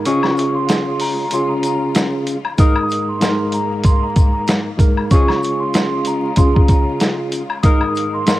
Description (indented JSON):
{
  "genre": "hip hop, boom-bap hip-hop",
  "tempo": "95 BPM",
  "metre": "4/4",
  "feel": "swing 56% on 16ths",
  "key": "unclear",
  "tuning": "A4 = 440 Hz",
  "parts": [
    { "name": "tine electric piano", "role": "accompaniment", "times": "0.0-8.4 s", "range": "Ab2 to Bb4", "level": "-19 LUFS", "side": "equal", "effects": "overdrive, medium stereo tremolo, high-pass filter, low-pass filter, cassette tape" },
    { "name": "clear studio string section", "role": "sustained chords", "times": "0.0-8.4 s", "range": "Ab2 to F4", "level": "-31 LUFS", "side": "left 1 dB", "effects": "high-pass filter, low-pass filter, cassette tape" },
    { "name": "vibraphone with soft mallets", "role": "melody", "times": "0.1-8.4 s", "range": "Bb5 to Eb6", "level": "-22 LUFS", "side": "equal", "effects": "high-pass filter, low-pass filter, cassette tape, analog delay" },
    { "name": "warm horn section", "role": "stabs", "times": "0.1-7.8 s", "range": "F3 to Bb4", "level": "-28 LUFS", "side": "left 1 dB", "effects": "high-pass filter, low-pass filter, cassette tape, analog delay" },
    { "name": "dusty soul sampler-style drum kit", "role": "drums", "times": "0.1-8.4 s", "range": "hi-hat, kick drum, snare drum", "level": "-15 LUFS", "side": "equal", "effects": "cassette tape" },
    { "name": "tube shaker and woodblock", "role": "percussion", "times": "0.1-8.4 s", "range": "none", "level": "-27 LUFS", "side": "left 5 dB", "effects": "none" }
  ],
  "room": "small room ambience",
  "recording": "home recording on cassette, vinyl crackle",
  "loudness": "-14 LUFS",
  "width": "side -16 dB against mid",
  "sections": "0.0-8.4 A section",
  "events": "break 0.0-2.6; kick muted 1.3-2.6",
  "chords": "0.1 Db; 2.6 Absus2; 5.1 Db; 7.6 Absus2"
}